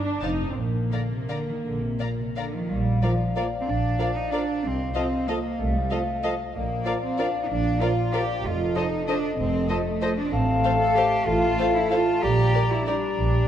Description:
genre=classical, orchestral ballroom waltz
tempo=157-205 BPM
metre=3/4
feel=rubato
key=Bb major, F major from 10.3 s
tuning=A4 = 440 Hz
part: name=warm studio viola section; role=accompaniment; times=0.0-12.9 s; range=Bb3 to Bb4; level=-34 LUFS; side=equal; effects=none
part: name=warm studio violin section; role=melody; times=0.2-13.0 s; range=D5 to Bb5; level=-38 LUFS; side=left 4 dB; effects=none
part: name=warm studio violin section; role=second line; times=0.2-12.9 s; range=Bb4 to F5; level=-36 LUFS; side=left 4 dB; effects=none
part: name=dark studio double bass section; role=bass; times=0.2-13.4 s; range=F1 to C2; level=-27 LUFS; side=right 2 dB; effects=none
part: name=warm studio cello section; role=bass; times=0.2-13.5 s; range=F2 to A4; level=-28 LUFS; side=right 3 dB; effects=none
part: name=warm French horn section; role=sustained chords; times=2.7-13.5 s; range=G4 to F5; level=-30 LUFS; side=left 5 dB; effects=none
part: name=silver concert flute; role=second line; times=3.0-13.5 s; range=A5 to Bb5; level=-33 LUFS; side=left 2 dB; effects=none
part: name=warm clarinet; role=second line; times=3.0-13.5 s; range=D5 to F5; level=-31 LUFS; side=left 3 dB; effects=none
part: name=dark bassoon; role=accompaniment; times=3.0-13.5 s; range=F3 to A3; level=-32 LUFS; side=equal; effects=none
room=moderate concert hall reverb, RT60 2.5 s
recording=dark, warm production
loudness=-22 LUFS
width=side -10 dB against mid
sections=0.0-2.7 A section; 2.7-13.5 B section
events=none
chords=0.2 F7(no3); 0.6 Bb; 4.6 F7/C; 6.5 Bb; 8.4 F7; 10.3 F/A; 12.2 Gm/Bb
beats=0.23 | 0.57 0.92 1.30 | 1.65 2.01 2.37 | 2.71 3.04 3.37 | 3.68 4.00 4.33 | 4.64 4.96 5.29 | 5.60 5.91 6.24 | 6.55 6.86 7.19 | 7.50 7.81 8.13 | 8.45 8.76 9.08 | 9.38 9.70 10.02 | 10.32 10.64 10.96 | 11.27 11.59 11.91 | 12.23 12.54 12.87 | 13.19

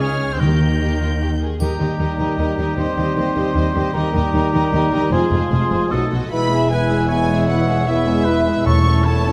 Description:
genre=cinematic, heroic adventure film score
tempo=153 BPM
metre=3/4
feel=straight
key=E major from 6.3 s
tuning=A4 = 439 Hz
part: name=warm symphonic violin section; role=melody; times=0.0-9.3 s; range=C5 to G6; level=-31 LUFS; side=equal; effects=none
part: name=warm oboe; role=second line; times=0.0-9.3 s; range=G4 to C#5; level=-30 LUFS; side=equal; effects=none
part: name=warm symphonic violin section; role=second line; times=0.0-9.3 s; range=F4 to E5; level=-32 LUFS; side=equal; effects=none
part: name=rich studio viola section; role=accompaniment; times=0.0-9.3 s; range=E3 to G4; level=-28 LUFS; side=equal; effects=none
part: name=dark symphonic cello section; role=bass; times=0.0-9.3 s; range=E2 to Eb3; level=-27 LUFS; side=equal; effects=none
part: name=warm symphonic double bass section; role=bass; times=0.0-9.3 s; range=E1 to Eb2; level=-24 LUFS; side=equal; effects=none
part: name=timpani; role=percussion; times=0.4-1.0, 8.7-9.2 s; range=E2 to Eb3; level=-20 LUFS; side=equal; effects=none
part: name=mellow concert flute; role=second line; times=1.6-9.3 s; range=E5 to D#6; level=-28 LUFS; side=equal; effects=none
part: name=bright trombone section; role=sustained chords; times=1.6-9.3 s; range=B2 to A3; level=-29 LUFS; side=equal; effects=none
part: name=mellow French horn section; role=sustained chords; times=1.6-9.3 s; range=Ab3 to F4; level=-27 LUFS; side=equal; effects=none
part: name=triangle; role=percussion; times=1.6-2.3 s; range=none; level=-44 LUFS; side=equal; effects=none
part: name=dark trumpet section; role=stabs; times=6.3-9.3 s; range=C#5 to E5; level=-29 LUFS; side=equal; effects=none
room=wet scoring stage reverb, RT60 1.8 s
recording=none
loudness=-18 LUFS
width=mono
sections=0.0-1.6 A section; 1.6-6.3 B section; 6.3-9.3 C section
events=none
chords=0.4 Eb; 2.8 Cm/Eb; 3.9 Eb; 5.1 Fm; 5.9 B7; 6.3 E; 8.7 A/E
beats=0.00 | 0.40 0.80 1.20 | 1.60 2.00 2.38 | 2.77 3.16 3.55 | 3.94 4.33 4.72 | 5.11 5.51 5.91 | 6.31 6.71 7.10 | 7.49 7.88 8.27 | 8.66 9.05

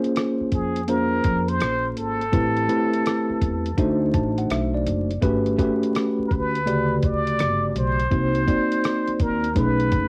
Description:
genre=hip hop, jazz-hop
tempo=83 BPM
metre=4/4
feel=swing 65% on 16ths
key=unclear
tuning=A4 = 441 Hz
part: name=mellow tine electric piano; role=accompaniment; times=0.0-10.1 s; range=C#3 to A5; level=-25 LUFS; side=equal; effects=cassette tape, plate reverb
part: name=dusty soul sampler-style drum kit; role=drums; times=0.0-10.1 s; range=hi-hat, kick drum, rim click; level=-28 LUFS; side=equal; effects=overdrive, cassette tape
part: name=upright bass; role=bass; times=0.4-10.1 s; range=F#1 to F2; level=-30 LUFS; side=equal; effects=none
part: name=trumpet with plunger mute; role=melody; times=0.5-10.1 s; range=Ab4 to D5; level=-28 LUFS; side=equal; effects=cassette tape, plate reverb
room=moderate studio reverb, RT60 0.6 s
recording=home recording on cassette, vinyl crackle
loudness=-22 LUFS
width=mono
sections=0.0-10.1 A section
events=tine electric piano fill 3.8-5.2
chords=0.0 Bbm9; 2.3 Am9; 3.8 D7b9; 5.2 Gmaj9#11; 8.1 Cm7b5; 9.6 B13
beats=0.16 0.89 1.61 | 2.33 3.06 3.78 4.50 | 5.22 5.95 6.67 7.39 | 8.12 8.84 9.56

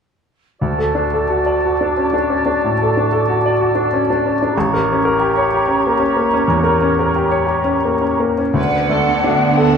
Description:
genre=classical, romantic movement for piano and orchestra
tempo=54-63 BPM (dotted quarters)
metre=12/8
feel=rubato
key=D major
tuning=A4 = 440 Hz
part: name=bright baby grand piano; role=melody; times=0.6-9.8 s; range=A1 to D5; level=-16 LUFS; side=left 1 dB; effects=none
part: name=clear oboe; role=second line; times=0.6-8.2 s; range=C#5 to D5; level=-23 LUFS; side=right 1 dB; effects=none
part: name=mellow clarinet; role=second line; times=0.6-8.2 s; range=F#4 to G4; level=-24 LUFS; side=right 1 dB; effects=none
part: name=mellow small flute group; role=second line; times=0.6-9.8 s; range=F#5 to Bb5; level=-21 LUFS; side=right 2 dB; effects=none
part: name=warm symphonic violin section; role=second line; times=8.6-9.8 s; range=F#4 to F#5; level=-22 LUFS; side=left 4 dB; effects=none
part: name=warm studio viola section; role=accompaniment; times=8.6-9.8 s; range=B3 to D4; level=-20 LUFS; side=right 3 dB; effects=none
part: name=rich symphonic cello section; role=bass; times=8.6-9.8 s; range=D3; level=-22 LUFS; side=right 3 dB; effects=none
part: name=rich symphonic double bass section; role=bass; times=8.6-9.8 s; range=D2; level=-23 LUFS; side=right 5 dB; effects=none
room=wet recital hall reverb, RT60 1.8 s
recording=minimal, uncompressed stereo recording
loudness=-14 LUFS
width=side -6 dB against mid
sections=0.6-8.6 A section; 8.6-9.8 B section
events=none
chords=0.6 D; 4.5 A7b9; 8.6 D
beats=| 0.62 1.62 2.62 3.59 | 4.55 5.51 6.49 7.50 | 8.58 9.60

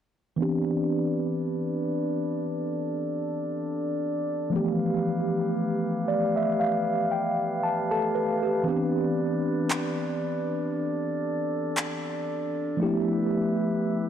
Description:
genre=contemporary R&B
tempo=58 BPM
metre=4/4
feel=swing 54% on 16ths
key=C major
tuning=A4 = 440 Hz
part: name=mellow tine electric piano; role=accompaniment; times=0.4-14.1 s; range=E3 to A5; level=-26 LUFS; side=equal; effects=medium stereo tremolo, low-pass filter
part: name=glass harmonica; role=sustained chords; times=0.4-14.1 s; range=A3 to F5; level=-30 LUFS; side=left 1 dB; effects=low-pass filter
part: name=electronic handclaps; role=drums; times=9.7-12.0 s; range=none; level=-32 LUFS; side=equal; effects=overdrive
room=moderate lush hall reverb, RT60 2.6 s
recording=dark, warm production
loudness=-25 LUFS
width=side -9 dB against mid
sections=0.4-14.1 A section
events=filter sweep 0.4-14.1; tine electric piano fill 5.6-8.7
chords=0.4 Cmaj9; 4.5 G13; 8.7 Cmaj9; 12.8 G13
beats=| 0.38 1.42 2.45 3.49 | 4.52 5.56 6.59 7.62 | 8.66 9.69 10.73 11.76 | 12.80 13.83

